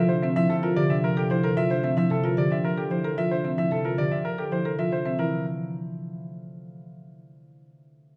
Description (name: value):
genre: classical, minimalist pattern music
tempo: 112 BPM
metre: 3/4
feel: straight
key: G dorian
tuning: A4 = 442 Hz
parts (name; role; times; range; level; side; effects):
- bright grand piano; melody; 0.0-5.4 s; G4 to E5; -31 LUFS; equal; none
- concert harp; accompaniment; 0.0-6.8 s; C3 to A3; -28 LUFS; equal; none
- marimba with medium mallets; arpeggios; 0.0-5.4 s; C4 to A4; -31 LUFS; equal; none
room: light reverb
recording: close, detailed microphones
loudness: -25 LUFS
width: mono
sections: 0.0-5.2 A section; 5.2-6.8 B section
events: none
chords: 0.0 Gm11 (rootless); 5.2 Fmaj7/E